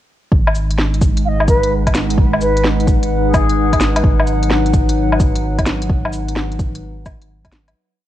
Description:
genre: future garage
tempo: 129 BPM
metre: 4/4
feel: swing 67% on 16ths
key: G# minor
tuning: A4 = 440 Hz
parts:
  - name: warbly tape-like pad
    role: sustained chords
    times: 0.3-7.8 s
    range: F#3 to F#5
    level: -20 LUFS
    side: left 1 dB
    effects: chorus, built-in reverb, vintage 12-bit sampler grit, sidechain pumping
  - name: warm sub bass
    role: bass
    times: 0.3-7.7 s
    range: G#1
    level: -19 LUFS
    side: equal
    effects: sidechain pumping
  - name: electronic kick drum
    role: drums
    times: 0.3-7.5 s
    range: none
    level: -16 LUFS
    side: equal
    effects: vintage 12-bit sampler grit, studio reverb
  - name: organic electronic drum kit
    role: drums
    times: 0.5-7.7 s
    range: cabasa, hi-hat, snare drum, woodblock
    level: -20 LUFS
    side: left 1 dB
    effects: vintage 12-bit sampler grit, studio reverb
  - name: mellow wooden flute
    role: melody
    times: 1.2-3.9 s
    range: G#4 to E#5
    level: -21 LUFS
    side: left 1 dB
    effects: analog delay
room: light reverb, digital ambience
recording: cassette tape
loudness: -13 LUFS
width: side -13 dB against mid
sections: 0.3-7.8 chorus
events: fade-out 5.3-7.8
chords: 0.3 G#m7

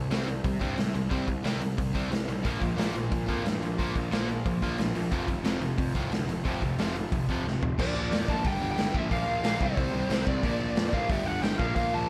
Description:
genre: punk rock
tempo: 180 BPM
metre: 4/4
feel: straight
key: unclear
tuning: A4 = 438 Hz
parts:
  - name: cranked stack guitar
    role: riff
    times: 0.0-7.8 s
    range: F2 to C4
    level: -36 LUFS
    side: equal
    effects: overdrive
  - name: overdriven semi-hollow guitar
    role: riff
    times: 0.0-12.1 s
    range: F2 to C4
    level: -36 LUFS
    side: equal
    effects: none
  - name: fuzz picked electric bass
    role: bass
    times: 0.0-12.1 s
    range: F1 to C3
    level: -37 LUFS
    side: equal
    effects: overdrive
  - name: raw garage drum kit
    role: drums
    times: 0.1-11.8 s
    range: crash cymbal, hi-hat, kick drum, snare drum, toms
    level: -33 LUFS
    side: equal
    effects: none
  - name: biting overdriven guitar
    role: riff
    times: 2.4-12.1 s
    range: F2 to C4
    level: -38 LUFS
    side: equal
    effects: none
  - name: lead guitar through a small cranked amp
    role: melody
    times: 7.8-12.1 s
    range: C5 to A5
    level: -34 LUFS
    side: equal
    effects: overdrive
room: little or no reverb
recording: none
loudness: -29 LUFS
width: mono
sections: 0.0-7.8 A section; 7.8-12.1 B section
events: drum fill 7.4-7.8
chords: 0.0 C5; 2.4 Bb5; 5.1 F5; 7.8 Bb; 8.4 G5; 8.9 Bb5; 9.6 C5; 10.4 Bb; 11.1 G5

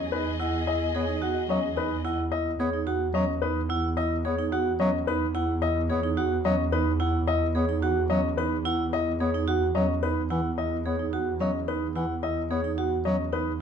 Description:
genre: classical, minimalist pattern music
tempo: 109 BPM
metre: 3/4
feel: straight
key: E major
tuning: A4 = 441 Hz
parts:
  - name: clear baby grand piano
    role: melody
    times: 0.0-13.5 s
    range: B4 to F#5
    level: -30 LUFS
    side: left 9 dB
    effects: none
  - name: rich chamber string section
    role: sustained chords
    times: 0.0-2.1 s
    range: G#4 to D#5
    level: -34 LUFS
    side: left 3 dB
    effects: none
  - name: vibraphone with hard mallets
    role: arpeggios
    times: 0.0-13.5 s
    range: C#4 to G#4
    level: -29 LUFS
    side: right 6 dB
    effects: none
  - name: warm chamber double bass section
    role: bass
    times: 0.0-13.6 s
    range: E2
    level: -30 LUFS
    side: right 2 dB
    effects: none
  - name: clear bass clarinet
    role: accompaniment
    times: 0.9-13.2 s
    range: E3 to B3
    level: -30 LUFS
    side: left 1 dB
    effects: none
room: light reverb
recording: dark, warm production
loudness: -24 LUFS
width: side -7 dB against mid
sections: 0.0-13.6 A section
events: none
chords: 0.0 Emaj9

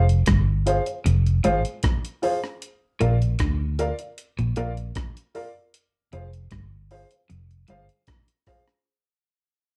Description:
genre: roots reggae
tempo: 77 BPM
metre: 4/4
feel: straight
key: F dorian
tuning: A4 = 441 Hz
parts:
  - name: electric guitar at the edge of break-up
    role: riff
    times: 0.0-7.8 s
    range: F2 to D3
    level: -30 LUFS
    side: equal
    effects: spring reverb
  - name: dark upright piano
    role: stabs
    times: 0.0-8.6 s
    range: F4 to F5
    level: -28 LUFS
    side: equal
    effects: none
  - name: vintage muted fingered electric bass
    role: bass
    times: 0.0-7.9 s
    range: F1 to D2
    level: -24 LUFS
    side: equal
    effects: none
  - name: breakbeat sampler-style drum kit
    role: drums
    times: 0.1-8.8 s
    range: hi-hat, kick drum, rim click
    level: -29 LUFS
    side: equal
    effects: none
room: light reverb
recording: dark, warm production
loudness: -23 LUFS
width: mono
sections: 0.0-8.9 A section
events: fade-out 0.0-8.9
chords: 0.0 Fm; 2.6 Bb; 5.7 Fm

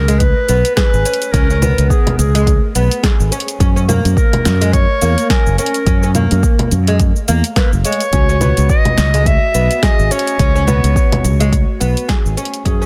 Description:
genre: organic downtempo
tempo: 106 BPM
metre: 4/4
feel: swing 57% on 16ths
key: C# dorian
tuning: A4 = 440 Hz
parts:
  - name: warm clarinet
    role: melody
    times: 0.0-12.9 s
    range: G#4 to E5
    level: -22 LUFS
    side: equal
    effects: delay
  - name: fretless electric bass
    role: bass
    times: 0.0-12.9 s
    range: F#1 to F#2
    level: -16 LUFS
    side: equal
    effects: sidechain pumping
  - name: oud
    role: arpeggios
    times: 0.1-12.9 s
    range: G#3 to G#4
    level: -23 LUFS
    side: equal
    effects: delay
  - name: deep house drum kit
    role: drums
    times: 0.1-12.9 s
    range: cabasa, congas, hi-hat, snare drum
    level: -22 LUFS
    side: equal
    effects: overdrive
  - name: electronic kick drum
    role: drums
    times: 0.2-12.8 s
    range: none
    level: -17 LUFS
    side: equal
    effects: overdrive
  - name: bronze singing bowl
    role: texture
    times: 8.1-12.9 s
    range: F#4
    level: -32 LUFS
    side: equal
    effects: none
room: digital ambience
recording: dense, heavily limited modern master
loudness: -14 LUFS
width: mono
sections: 0.0-12.9 A section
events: fade-out 11.1-12.9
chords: 0.0 C#5; 3.6 F#; 8.1 C#5

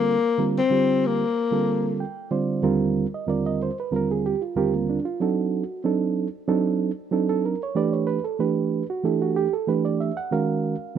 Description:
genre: jazz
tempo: 94 BPM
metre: 4/4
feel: straight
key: unclear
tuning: A4 = 440 Hz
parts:
  - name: breathy tenor saxophone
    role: melody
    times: 0.0-2.0 s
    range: Bb3 to C4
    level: -22 LUFS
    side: left 6 dB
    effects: none
  - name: reed electric piano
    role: accompaniment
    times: 0.0-11.0 s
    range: Eb2 to G5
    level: -22 LUFS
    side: right 5 dB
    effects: none
room: light reverb, small room ambience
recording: dry, close 1970s-style studio recording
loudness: -21 LUFS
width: side -8 dB against mid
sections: 0.0-2.6 A section; 2.6-11.0 B section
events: reed electric piano fill 1.7-2.6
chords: 0.0 Bbmaj13; 2.6 Ebmaj9; 5.2 D7b9; 7.8 G; 10.3 Ebm7

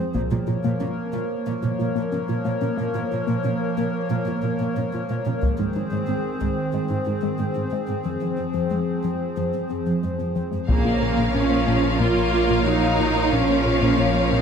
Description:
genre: cinematic, hybrid orchestral and electronic film score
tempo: 91 BPM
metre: 4/4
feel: straight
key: Bb minor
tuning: A4 = 440 Hz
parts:
  - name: hollow soft pad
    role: sustained chords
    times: 0.0-14.4 s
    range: Eb3 to F5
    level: -26 LUFS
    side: equal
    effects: chorus
  - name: woody wave-folded pluck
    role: arpeggios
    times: 0.0-14.4 s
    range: F3 to Bb4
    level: -31 LUFS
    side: left 8 dB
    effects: chorus, tape echo
  - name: dark symphonic cello section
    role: bass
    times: 0.0-14.4 s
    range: F2 to F4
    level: -25 LUFS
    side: right 4 dB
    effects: none
  - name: taiko ensemble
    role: drums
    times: 0.1-1.4, 5.4-6.7, 10.7-12.0 s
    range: none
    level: -24 LUFS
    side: left 1 dB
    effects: none
  - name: clear symphonic violin section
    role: melody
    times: 10.7-14.4 s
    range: F5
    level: -30 LUFS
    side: left 5 dB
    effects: none
  - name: rich studio violin section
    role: second line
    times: 10.7-14.4 s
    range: Bb4 to Db5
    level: -30 LUFS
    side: left 5 dB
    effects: none
  - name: rich symphonic viola section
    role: accompaniment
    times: 10.7-14.4 s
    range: Db3 to Bb3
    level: -28 LUFS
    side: right 1 dB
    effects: none
  - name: mellow French horn section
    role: sustained chords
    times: 10.7-14.4 s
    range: Bb4 to Db5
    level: -30 LUFS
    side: left 7 dB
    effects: none
  - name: rubbery square bass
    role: riff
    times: 10.7-14.4 s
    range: Bb2 to Bb3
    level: -27 LUFS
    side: left 4 dB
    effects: none
  - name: bright symphonic double bass section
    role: bass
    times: 10.7-14.4 s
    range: Bb1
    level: -28 LUFS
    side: right 2 dB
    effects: none
  - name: phased detuned saw bass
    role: bass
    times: 10.7-14.4 s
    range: Bb1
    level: -27 LUFS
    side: left 1 dB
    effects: phaser
room: moderate concert hall reverb, RT60 2.1 s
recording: none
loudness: -20 LUFS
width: side -7 dB against mid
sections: 0.0-10.7 A section; 10.7-14.4 B section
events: build-up 0.0-10.7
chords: 0.1 Bbm; 5.4 Ab; 8.1 Fm; 10.7 Bbm

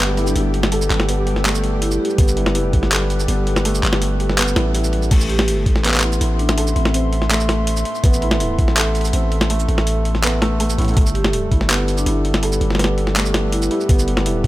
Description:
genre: half-time drum and bass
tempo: 164 BPM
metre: 4/4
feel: half-time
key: A minor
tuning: A4 = 441 Hz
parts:
  - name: dark analog pad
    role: sustained chords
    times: 0.0-14.5 s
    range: G3 to C6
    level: -25 LUFS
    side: equal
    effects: chorus, vintage 12-bit sampler grit, sidechain pumping
  - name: felt-muted upright piano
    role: arpeggios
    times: 0.0-14.5 s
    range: A2 to A4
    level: -25 LUFS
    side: right 1 dB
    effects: tape echo
  - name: long sustained 808-style bass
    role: bass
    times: 0.0-14.5 s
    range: G1 to A1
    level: -19 LUFS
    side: equal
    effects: tube saturation
  - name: flickering grainy texture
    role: texture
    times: 0.0-5.1 s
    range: G3 to G4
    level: -30 LUFS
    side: equal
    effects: built-in reverb
  - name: boom bap sampler-style drum kit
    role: drums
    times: 0.2-14.5 s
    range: crash cymbal, handclaps, hi-hat, shaker, snare drum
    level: -21 LUFS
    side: equal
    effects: none
  - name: vibraphone with soft mallets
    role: melody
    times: 0.3-2.4, 5.3-6.9, 11.1-14.1 s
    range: C4 to G4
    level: -28 LUFS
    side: equal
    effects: dub echo
  - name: electronic kick drum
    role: drums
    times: 2.2-2.8, 5.1-5.7, 8.0-8.7, 11.0-11.6, 13.9-14.5 s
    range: none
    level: -16 LUFS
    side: equal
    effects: none
room: little or no reverb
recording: none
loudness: -15 LUFS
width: side -16 dB against mid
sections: 0.0-5.1 A section; 5.1-14.5 A section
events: drop 0.0-5.1, 5.1-14.5; kick drops out 3.6-5.1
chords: 0.0 Gadd9; 5.1 Am; 11.0 Gadd9

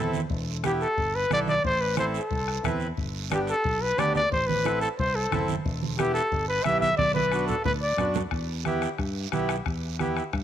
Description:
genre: latin, cumbia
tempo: 180 BPM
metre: 4/4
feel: straight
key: E minor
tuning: A4 = 440 Hz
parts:
  - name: breathy trumpet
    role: melody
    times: 0.0-8.1 s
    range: G4 to E5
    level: -26 LUFS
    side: left 1 dB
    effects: none
  - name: accordion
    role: accompaniment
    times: 0.0-10.2 s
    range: B3 to B4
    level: -32 LUFS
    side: right 1 dB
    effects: none
  - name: fingered electric bass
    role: bass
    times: 0.0-10.4 s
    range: E1 to G2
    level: -31 LUFS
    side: equal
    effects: none
  - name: congas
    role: percussion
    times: 0.1-10.4 s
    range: none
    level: -32 LUFS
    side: right 8 dB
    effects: none
  - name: guiro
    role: percussion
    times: 0.1-10.4 s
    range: none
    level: -41 LUFS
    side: right 14 dB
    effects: none
  - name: bombo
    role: percussion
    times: 0.3-10.4 s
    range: none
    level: -34 LUFS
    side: left 4 dB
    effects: none
room: light reverb, studio reverb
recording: 1960s-style stereo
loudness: -24 LUFS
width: side -10 dB against mid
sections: 0.0-8.3 A section; 8.3-10.4 B section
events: drum fill 7.0-8.3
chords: 0.3 Em; 1.6 Am; 3.0 G; 4.3 Am; 5.6 Em; 7.0 Bm; 8.3 Em

